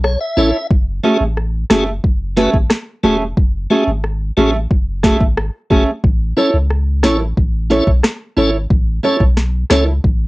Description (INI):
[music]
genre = dancehall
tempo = 90 BPM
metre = 4/4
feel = straight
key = F# minor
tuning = A4 = 440 Hz
[part]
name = tonewheel organ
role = accompaniment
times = 0.0-9.8 s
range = A3 to E5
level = -17 LUFS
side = left 1 dB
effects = fast rotary speaker, cassette tape
[part]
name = punchy sub bass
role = bass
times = 0.0-10.3 s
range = E1 to C#2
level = -18 LUFS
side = equal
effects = none
[part]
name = afro-pop drum kit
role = drums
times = 0.0-10.2 s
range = kick drum, rim click, snare drum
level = -14 LUFS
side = equal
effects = overdrive, cassette tape
[part]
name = nylon-string guitar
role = arpeggios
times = 0.4-9.9 s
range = A3 to C#5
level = -16 LUFS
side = right 2 dB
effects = cassette tape
[sound]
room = light reverb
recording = home recording on cassette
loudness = -13 LUFS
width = side -21 dB against mid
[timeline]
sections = 0.0-10.3 A section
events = break 0.0-0.7; tonewheel organ fill 0.0-0.7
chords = 0.0 A; 0.7 F#madd9; 6.0 A